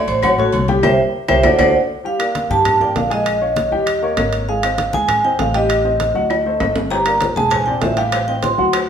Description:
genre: Afro-Cuban jazz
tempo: 198 BPM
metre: 4/4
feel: straight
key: G minor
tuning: A4 = 442 Hz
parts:
  - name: vibraphone with medium hard mallets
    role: melody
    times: 0.0-8.7 s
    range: F#4 to C6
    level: -17 LUFS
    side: right 2 dB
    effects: none
  - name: warm upright piano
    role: accompaniment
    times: 0.0-8.8 s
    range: F#3 to Ab5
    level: -21 LUFS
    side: left 3 dB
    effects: none
  - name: upright bass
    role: bass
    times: 0.0-8.9 s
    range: E1 to G2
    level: -23 LUFS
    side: equal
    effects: none
  - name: agogo bells and timbales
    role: percussion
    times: 0.1-8.9 s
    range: none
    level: -24 LUFS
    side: right 3 dB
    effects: none
  - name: congas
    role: percussion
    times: 0.1-8.9 s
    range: none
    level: -26 LUFS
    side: left 2 dB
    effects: none
  - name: cowbell and bongos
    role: percussion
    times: 0.1-1.7, 6.9-8.9 s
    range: none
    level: -26 LUFS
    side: left 5 dB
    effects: none
  - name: claves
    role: percussion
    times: 0.2-8.9 s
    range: none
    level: -25 LUFS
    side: left 9 dB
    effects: none
room: wet large studio reverb, RT60 1.1 s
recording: band playing live in one room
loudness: -14 LUFS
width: side -8 dB against mid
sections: 0.0-2.0 A section; 2.0-8.9 B section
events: vibraphone solo 0.0-2.0; band accent 0.8-2.0; drum fill 1.1-2.0, 6.3-6.9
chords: 0.0 Dmaj7 (rootless); 0.8 C7; 1.4 D7; 2.0 Gm9; 3.3 Bbm7; 3.9 Eb7; 4.5 Abmaj7; 5.7 Am7b5; 6.3 D7b9; 6.9 Gm; 7.5 E7alt; 8.1 Am7b5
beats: 0.23 0.53 | 0.84 1.14 1.44 1.75 | 2.05 2.35 2.65 2.96 | 3.26 3.57 3.87 4.17 | 4.48 4.78 5.08 5.39 | 5.69 6.00 6.30 6.60 | 6.91 7.21 7.51 7.82 | 8.12 8.43 8.73

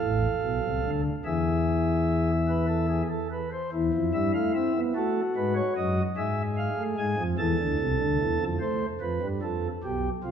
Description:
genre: classical, baroque-style 3-part fugue for pipe organ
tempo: 49 BPM (dotted quarters)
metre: 6/8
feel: straight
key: A minor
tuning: A4 = 440 Hz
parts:
  - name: pipe organ, flutes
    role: solo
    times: 0.0-10.3 s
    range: A1 to A5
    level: -24 LUFS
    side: equal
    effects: none
room: wet concert hall reverb, RT60 2.2 s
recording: minimal, uncompressed stereo recording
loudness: -24 LUFS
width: side -8 dB against mid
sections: 0.0-3.7 A section; 3.7-8.6 B section; 8.6-10.3 A section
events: none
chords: 0.0 Bm7b5; 1.2 E; 3.7 Am/E; 5.0 B7; 6.2 E/G#; 7.4 Am; 8.6 F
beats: 0.01 | 1.25 2.48 | 3.73 4.96 | 6.18 7.39 | 8.61 9.84

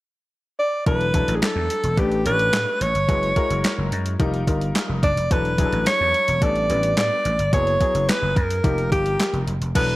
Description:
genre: early-eighties boogie funk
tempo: 108 BPM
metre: 4/4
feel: straight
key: E dorian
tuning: A4 = 440 Hz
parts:
  - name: breathy alto saxophone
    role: melody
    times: 0.6-10.0 s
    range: G4 to D5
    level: -21 LUFS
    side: equal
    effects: none
  - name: clear concert grand piano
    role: accompaniment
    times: 0.9-10.0 s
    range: F3 to C#5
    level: -28 LUFS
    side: left 4 dB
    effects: none
  - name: vintage slap bass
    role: bass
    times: 0.9-10.0 s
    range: E1 to A2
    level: -24 LUFS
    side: equal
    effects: none
  - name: crisp 8-bit digital drum machine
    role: drums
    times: 0.9-10.0 s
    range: crash cymbal, handclaps, hi-hat, kick drum, snare drum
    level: -23 LUFS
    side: equal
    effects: overdrive, gated reverb
room: light reverb, digital ambience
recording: none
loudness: -18 LUFS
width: side -18 dB against mid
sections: 0.9-9.8 A section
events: none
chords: 0.0 N.C.; 0.9 E9sus4; 2.0 A9sus4; 3.1 F#9sus4; 4.2 F9sus4; 5.3 E9sus4; 6.4 A9sus4; 7.5 F#9sus4; 8.6 F9sus4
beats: 0.31 | 0.86 1.42 1.98 2.53 | 3.09 3.64 4.20 4.75 | 5.31 5.87 6.42 6.98 | 7.53 8.09 8.64 9.20 | 9.75

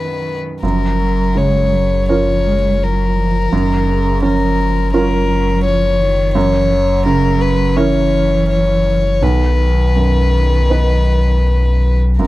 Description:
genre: neoclassical piano and strings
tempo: 83 BPM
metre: 4/4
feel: rubato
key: F# major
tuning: A4 = 440 Hz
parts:
  - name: rich violin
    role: melody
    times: 0.0-12.3 s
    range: A#4 to C#5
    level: -18 LUFS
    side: left 4 dB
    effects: none
  - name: rich cello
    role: second line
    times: 0.0-12.3 s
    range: C#3 to G#3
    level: -22 LUFS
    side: right 3 dB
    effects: none
  - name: clear baby grand piano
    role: accompaniment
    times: 0.0-12.3 s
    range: B1 to B4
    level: -19 LUFS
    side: right 4 dB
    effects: none
  - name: pure sine sub bass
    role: bass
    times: 0.6-12.3 s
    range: F#1 to B1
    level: -16 LUFS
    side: equal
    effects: none
room: studio reverb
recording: dry, close 1970s-style studio recording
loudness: -12 LUFS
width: side -17 dB against mid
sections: 0.6-12.3 A section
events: none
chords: 0.0 B; 0.6 F#maj7; 6.3 F#7; 9.2 B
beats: | 0.63 1.36 2.09 2.82 | 3.52 4.23 4.93 5.64 | 6.35 7.05 7.76 8.48 | 9.21 9.96 10.70 11.44 | 12.19

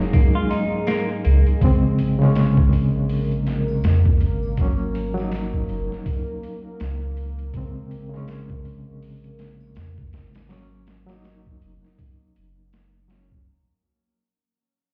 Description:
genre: trip hop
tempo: 81 BPM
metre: 4/4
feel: swing 59% on 16ths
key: unclear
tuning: A4 = 439 Hz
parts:
  - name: reed electric piano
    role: accompaniment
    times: 0.0-13.5 s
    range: Db3 to Eb4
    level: -25 LUFS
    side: equal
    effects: fast tremolo, tape echo
  - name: deep dark ambient pad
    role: sustained chords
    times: 0.0-13.5 s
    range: Ab3 to Bb4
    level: -34 LUFS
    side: equal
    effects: chorus, built-in reverb, vintage 12-bit sampler grit
  - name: boom bap sampler-style drum kit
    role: drums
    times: 0.0-13.5 s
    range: hi-hat, kick drum, snare drum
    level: -24 LUFS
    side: equal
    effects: overdrive
  - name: semi-hollow electric guitar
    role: arpeggios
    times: 0.1-1.5 s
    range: Bb3 to F4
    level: -31 LUFS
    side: equal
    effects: vintage 12-bit sampler grit, tape echo
  - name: tambourine and triangle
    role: percussion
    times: 0.9-12.9 s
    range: none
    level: -65 LUFS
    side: equal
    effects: none
  - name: round analog bass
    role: bass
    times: 1.3-13.4 s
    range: Gb1 to F2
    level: -25 LUFS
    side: equal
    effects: none
room: little or no reverb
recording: heard muffled through a wall, stone room reverb, EQ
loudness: -21 LUFS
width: mono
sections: 0.0-13.5 A section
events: fade-out 0.0-13.5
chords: 0.0 Ab9sus4; 1.6 Bbm9; 4.6 Ab9sus4; 7.5 Bbm9; 10.5 Ab9sus4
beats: 0.13 0.87 | 1.61 2.35 3.09 3.83 | 4.57 5.31 6.05 6.80 | 7.54 8.28 9.02 9.76 | 10.50 11.24 11.98 12.72

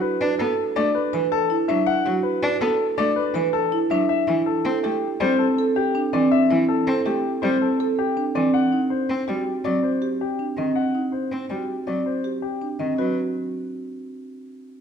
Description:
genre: classical, minimalist pattern music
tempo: 162 BPM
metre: 6/4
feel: straight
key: unclear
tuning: A4 = 442 Hz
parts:
  - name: warm baby grand piano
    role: melody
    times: 0.0-13.2 s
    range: G4 to F#5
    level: -25 LUFS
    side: left 9 dB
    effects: none
  - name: marimba with soft mallets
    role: arpeggios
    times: 0.0-13.2 s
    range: C4 to B4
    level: -22 LUFS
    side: right 4 dB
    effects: none
  - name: rich cello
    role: accompaniment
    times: 0.2-13.2 s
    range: Eb3 to D4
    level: -29 LUFS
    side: left 1 dB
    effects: none
room: moderate recital hall reverb, RT60 1.7 s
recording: minimal, uncompressed stereo recording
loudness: -20 LUFS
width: side -7 dB against mid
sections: 0.0-13.0 A section; 13.0-14.8 B section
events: none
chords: 0.0 Bm7; 4.1 D7sus4; 8.5 Cmadd9; 13.0 N.C.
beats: 0.02 0.39 0.76 1.13 1.50 | 1.87 2.24 2.61 2.98 3.35 3.72 | 4.09 4.46 4.83 5.20 5.57 5.94 | 6.31 6.68 7.05 7.42 7.79 8.16 | 8.54 8.91 9.28 9.65 10.02 10.39 | 10.76 11.13 11.50 11.87 12.24 12.61 | 12.98

